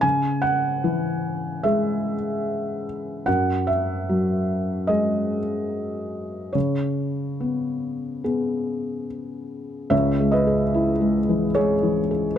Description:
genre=neoclassical minimalist piano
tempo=73 BPM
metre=4/4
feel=rubato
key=C# minor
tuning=A4 = 444 Hz
part: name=felt-muted upright piano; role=solo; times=0.0-12.4 s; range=C#2 to G#5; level=-21 LUFS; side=equal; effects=none
room=light reverb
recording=dark, warm production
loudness=-21 LUFS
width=side -9 dB against mid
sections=0.0-9.9 A section; 9.9-12.4 A section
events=none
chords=0.0 C#m; 3.3 F#sus2; 6.5 C#5; 9.9 C#m

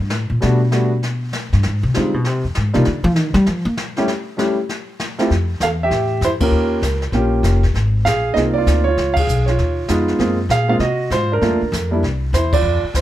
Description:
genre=jazz piano trio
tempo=196 BPM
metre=4/4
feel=swing 63% on 8ths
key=unclear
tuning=A4 = 440 Hz
part: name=upright bass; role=bass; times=0.0-13.0 s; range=F1 to Bb3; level=-18 LUFS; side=left 1 dB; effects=none
part: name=jazz brush drum kit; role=drums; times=0.1-13.0 s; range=brushed snare drum, crash cymbal, hi-hat, kick drum, snare drum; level=-25 LUFS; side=left 2 dB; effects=none
part: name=warm grand piano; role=melody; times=0.4-13.0 s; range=G3 to F5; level=-18 LUFS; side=right 1 dB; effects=none
room=little or no reverb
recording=none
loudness=-15 LUFS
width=side -13 dB against mid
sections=0.0-5.3 A section; 5.3-13.0 B section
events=upright bass solo 0.0-5.3; band accent 6.4, 9.1, 12.5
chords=0.4 Gmaj7; 1.6 Fm7; 2.2 Bb7(no3) (rootless); 2.9 Ebmaj7; 4.1 A7; 4.7 N.C.; 5.3 Fmaj7; 6.5 Eb9; 7.7 Ab69; 9.0 Db9; 10.2 Gbmaj9#11; 11.4 Gm7; 12.0 C

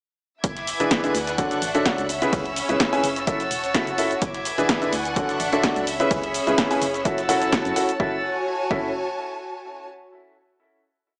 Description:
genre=piano house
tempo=127 BPM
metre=4/4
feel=swing 54% on 16ths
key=F# minor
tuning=A4 = 440 Hz
part: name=rich chamber violin section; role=sustained chords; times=0.4-8.2 s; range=C#5 to A6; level=-32 LUFS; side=equal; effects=sidechain pumping
part: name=organ-like FM bass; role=bass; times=0.4-8.9 s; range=E1 to F#2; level=-40 LUFS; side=equal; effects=sidechain pumping
part: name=dusty soul sampler-style drum kit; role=drums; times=0.4-7.9 s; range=hi-hat, snare drum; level=-39 LUFS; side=equal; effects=none
part: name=electronic kick drum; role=drums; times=0.4-8.8 s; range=none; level=-31 LUFS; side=equal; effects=none
part: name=punchy analog drum machine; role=drums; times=0.4-8.0 s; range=hi-hat, shaker, snare drum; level=-28 LUFS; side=equal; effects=none
part: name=clear studio string section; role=texture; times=0.4-9.8 s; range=C#4 to A5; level=-31 LUFS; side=equal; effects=sidechain pumping
part: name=bright grand piano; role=riff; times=0.8-8.9 s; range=C#3 to G#5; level=-26 LUFS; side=equal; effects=sidechain pumping, tape echo
room=light reverb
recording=dry, gritty hardware recording, small speaker sound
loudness=-23 LUFS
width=mono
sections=0.4-8.0 groove; 8.0-9.9 final chord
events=none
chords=0.4 E7; 1.1 Dmaj7; 2.1 C#m7; 3.3 F#m7; 4.2 E7; 4.9 Dmaj7; 5.9 C#m7; 7.1 F#m7

